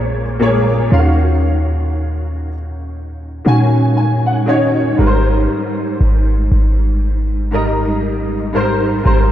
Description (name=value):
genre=contemporary R&B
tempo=59 BPM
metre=4/4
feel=swing 58% on 16ths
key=Ab major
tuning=A4 = 439 Hz
part: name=warm baby grand piano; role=accompaniment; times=0.0-9.3 s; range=Ab2 to Ab5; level=-16 LUFS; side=equal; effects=ensemble chorus
part: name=clean 808-style bass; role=bass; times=0.0-9.3 s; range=Ab1 to Bb2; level=-16 LUFS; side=equal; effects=none
room=moderate cathedral reverb, RT60 4.4 s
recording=dreamy mix soaked in reverb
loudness=-13 LUFS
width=side -12 dB against mid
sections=0.0-9.3 A section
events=grand piano fill 3.5-5.0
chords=0.0 Bbm7; 0.9 Ebm9; 5.0 Abmaj9